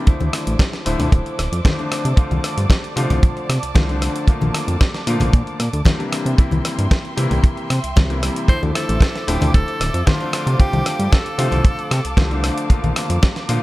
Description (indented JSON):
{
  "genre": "nu-disco, nu disco",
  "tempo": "114 BPM",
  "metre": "4/4",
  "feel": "straight",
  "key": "D minor",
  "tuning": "A4 = 442 Hz",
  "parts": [
    { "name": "bright concert grand piano", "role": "accompaniment", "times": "0.0-13.6 s", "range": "C3 to F4", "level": "-25 LUFS", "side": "left 2 dB", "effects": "sidechain pumping" },
    { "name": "warm symphonic string section", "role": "sustained chords", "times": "0.0-13.6 s", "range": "C5 to D6", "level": "-30 LUFS", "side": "right 3 dB", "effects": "sidechain pumping" },
    { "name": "fat analog bass", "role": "bass", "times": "0.1-13.6 s", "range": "D1 to C3", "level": "-20 LUFS", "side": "equal", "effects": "none" },
    { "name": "dusty soul sampler-style drum kit", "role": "drums", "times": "0.1-13.6 s", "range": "hi-hat, rim click, snare drum", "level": "-25 LUFS", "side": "equal", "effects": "studio reverb" },
    { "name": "kick drum", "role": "drums", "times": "0.1-13.3 s", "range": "none", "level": "-13 LUFS", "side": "equal", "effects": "studio reverb" },
    { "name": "congas", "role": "percussion", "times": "0.2-12.9 s", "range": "none", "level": "-26 LUFS", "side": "left 2 dB", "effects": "none" },
    { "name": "edgy tenor saxophone", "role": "melody", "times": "8.5-12.4 s", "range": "F4 to C5", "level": "-26 LUFS", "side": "equal", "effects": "tape echo" }
  ],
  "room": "studio ambience",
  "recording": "none",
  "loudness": "-16 LUFS",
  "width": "side -18 dB against mid",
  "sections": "0.1-13.6 A section",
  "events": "none",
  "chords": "0.1 Dm9; 1.9 F6/C; 4.3 Bbmaj7; 6.1 C7; 8.5 Dm9; 10.3 F6/C; 12.7 Bbmaj7"
}